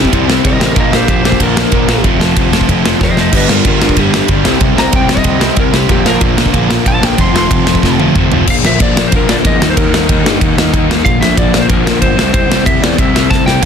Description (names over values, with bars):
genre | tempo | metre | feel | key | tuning
punk rock | 187 BPM | 4/4 | straight | unclear | A4 = 440 Hz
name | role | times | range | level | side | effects
lightly driven lead guitar | melody | 0.0-13.7 s | E4 to C6 | -17 LUFS | equal | none
biting overdriven guitar | riff | 0.0-8.5, 13.6-13.7 s | F2 to C4 | -18 LUFS | right 15 dB | none
crunchy overdriven guitar | riff | 0.0-13.7 s | F2 to E4 | -18 LUFS | right 1 dB | none
overdriven electric guitar | riff | 0.0-13.7 s | F2 to Eb4 | -16 LUFS | left 14 dB | none
fuzz picked electric bass | bass | 0.0-13.7 s | F1 to G2 | -17 LUFS | right 1 dB | overdrive
big rock drum kit | drums | 0.0-13.7 s | crash cymbal, kick drum, ride cymbal, snare drum, toms | -12 LUFS | equal | none
room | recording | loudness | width
little or no reverb | dense, heavily limited modern master | -9 LUFS | side -7 dB against mid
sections
0.0-8.5 A section; 8.5-13.7 B section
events
lead electric guitar solo 0.0-8.5; drum fill 3.0-3.3, 7.8-8.5, 13.3-13.6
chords
0.0 C; 0.8 Bb; 2.0 F; 3.3 G; 4.4 C; 5.9 Bb; 7.2 F; 8.5 Bb; 9.6 Eb; 11.0 Bb; 12.2 C